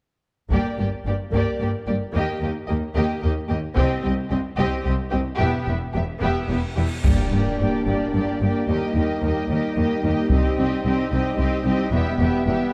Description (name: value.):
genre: cinematic, epic orchestral film score.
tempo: 111 BPM.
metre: 3/4.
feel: straight.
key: G minor.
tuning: A4 = 439 Hz.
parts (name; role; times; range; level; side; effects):
dark symphonic violin section; melody; 0.5-12.7 s; D5 to E5; -35 LUFS; equal; none.
warm symphonic violin section; second line; 0.5-12.7 s; G4; -32 LUFS; equal; none.
rich studio viola section; accompaniment; 0.5-12.7 s; Bb3 to C4; -30 LUFS; equal; none.
rich symphonic cello section; bass; 0.5-12.5 s; C2 to G2; -29 LUFS; equal; none.
rich symphonic double bass section; bass; 0.5-12.6 s; E1 to Eb2; -28 LUFS; equal; none.
taiko ensemble; drums; 0.5-11.3 s; none; -26 LUFS; equal; none.
cymbal swell and impact; sound effects; 6.5-8.7 s; none; -34 LUFS; equal; none.
warm French horn section; sustained chords; 7.0-12.7 s; G3 to Eb4; -29 LUFS; equal; none.
room: moderate scoring stage reverb, RT60 1.8 s.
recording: dark, warm production.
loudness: -22 LUFS.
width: mono.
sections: 0.5-7.0 A section; 7.0-12.7 B section.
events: cymbal swell 6.5-7.0; impact 7.0-8.7.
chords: 0.5 Gm; 2.2 Eb; 3.8 Cm; 5.4 Em; 7.0 Gm; 8.7 Eb; 10.3 Cm; 11.9 Em.